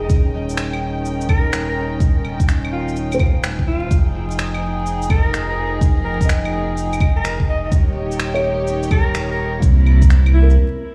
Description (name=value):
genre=future garage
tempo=126 BPM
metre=4/4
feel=swing 66% on 16ths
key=F minor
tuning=A4 = 440 Hz
part: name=breathy alto saxophone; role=melody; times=0.0-10.6 s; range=E4 to Eb5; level=-29 LUFS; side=equal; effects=dub echo
part: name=felt-muted upright piano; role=accompaniment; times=0.0-10.9 s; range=Ab4 to Eb5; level=-29 LUFS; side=equal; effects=sidechain pumping, tape echo
part: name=dark studio string section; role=sustained chords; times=0.0-10.6 s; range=C3 to G5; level=-27 LUFS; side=equal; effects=sidechain pumping
part: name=warm sub bass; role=bass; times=0.0-10.6 s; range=Eb1 to C2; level=-21 LUFS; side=equal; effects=sidechain pumping
part: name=electronic kick drum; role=drums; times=0.1-10.1 s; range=none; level=-17 LUFS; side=equal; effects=studio reverb
part: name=electronic shaker, finger snaps and claves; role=drums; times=0.1-10.6 s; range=none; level=-30 LUFS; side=equal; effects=studio reverb
room=small room ambience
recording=played on a big sound system in a bare room, stone room reverb, vinyl crackle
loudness=-18 LUFS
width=mono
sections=0.0-10.9 A section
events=break 10.6-10.9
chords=0.1 Eb7; 3.9 Fm9; 7.7 Eb7; 9.6 C7b9